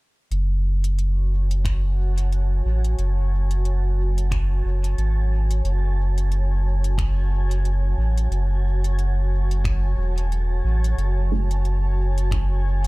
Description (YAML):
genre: ambient dub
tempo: 90 BPM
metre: 4/4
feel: swing 57% on 16ths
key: F# minor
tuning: A4 = 437 Hz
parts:
  - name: granular cloud pad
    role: sustained chords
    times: 1.2-12.9 s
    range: F#4 to A5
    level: -33 LUFS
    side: right 1 dB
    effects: built-in reverb
  - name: warm sub bass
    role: bass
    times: 0.3-12.9 s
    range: E1 to A1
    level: -20 LUFS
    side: equal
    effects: none
  - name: organic electronic drum kit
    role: drums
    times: 0.3-12.9 s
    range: finger snaps, hi-hat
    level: -37 LUFS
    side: left 2 dB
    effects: overdrive, dub echo
  - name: electronic kick drum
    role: drums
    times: 1.6-12.5 s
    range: none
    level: -27 LUFS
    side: equal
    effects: overdrive
  - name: filtered dub chord stab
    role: stabs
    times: 11.3-11.5 s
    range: A3 to G#4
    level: -31 LUFS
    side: right 7 dB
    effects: phaser, lush chorus, dub echo
room: little or no reverb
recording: echo-heavy mix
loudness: -19 LUFS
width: side -23 dB against mid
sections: 0.3-12.9 A section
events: none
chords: 0.3 F#m